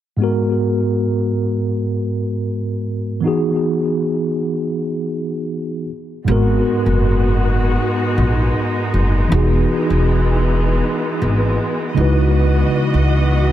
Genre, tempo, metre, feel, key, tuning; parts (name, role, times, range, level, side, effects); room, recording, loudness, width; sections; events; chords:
R&B; 79 BPM; 4/4; swing 54% on 16ths; A4 = 439 Hz
mellow tine electric piano; accompaniment; 0.2-13.5 s; G#2 to B4; -18 LUFS; equal; medium stereo tremolo, tape echo
warm studio string section; sustained chords; 6.3-13.5 s; E3 to D#5; -22 LUFS; left 1 dB
upright bass; bass; 6.3-13.5 s; E1 to C#2; -16 LUFS; equal
light reverb; echo-heavy mix; -15 LUFS; side -12 dB against mid
0.2-6.3 A section; 6.3-13.5 B section
0.2 G#m7; 3.2 Emaj7; 5.9 N.C.; 6.3 G#m7; 9.3 Emaj7; 12.0 C#m11